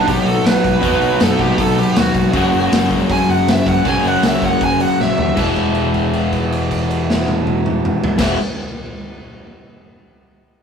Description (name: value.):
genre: punk rock.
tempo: 158 BPM.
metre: 4/4.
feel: straight.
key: E lydian.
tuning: A4 = 441 Hz.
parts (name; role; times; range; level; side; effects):
bluesy overdriven lead guitar; melody; 0.0-5.4 s; F#4 to G#5; -19 LUFS; right 1 dB; distortion.
distorted electric guitar; riff; 0.0-8.4 s; E2 to B3; -21 LUFS; right 6 dB; distortion.
overdriven semi-hollow guitar; riff; 0.0-8.4 s; F#2 to F#4; -18 LUFS; left 5 dB; none.
picked electric bass; bass; 0.1-8.3 s; E1 to F#2; -24 LUFS; equal; none.
raw garage drum kit; drums; 0.1-8.3 s; crash cymbal, hi-hat, kick drum, snare drum, toms; -20 LUFS; equal; none.
room: moderate studio ambience, RT60 0.5 s.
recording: rough rehearsal-room recording, warm saturation.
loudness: -13 LUFS.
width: side -7 dB against mid.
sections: 0.0-5.4 A section; 5.4-8.4 B section.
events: lead electric guitar solo 0.0-5.4; drum fill 5.0-5.4; held note 5.4-8.2.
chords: 0.0 B; 2.3 F#; 5.4 E.